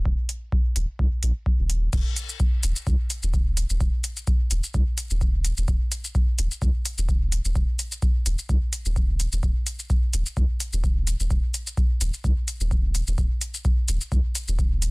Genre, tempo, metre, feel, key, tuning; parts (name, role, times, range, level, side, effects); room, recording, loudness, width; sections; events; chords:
dub techno; 128 BPM; 4/4; swing 54% on 16ths; A4 = 440 Hz
soft dub sub bass; bass; 0.0-14.9 s; Eb1 to Db2; -24 LUFS; equal; sidechain pumping
electronic kick drum; drums; 0.1-14.7 s; -23 LUFS; equal
deep house drum kit; drums; 0.3-14.9 s; crash cymbal, hi-hat, shaker; -30 LUFS; left 1 dB
little or no reverb; dense, heavily limited modern master; -22 LUFS; side -30 dB against mid
0.0-1.9 A section; 1.9-14.9 A section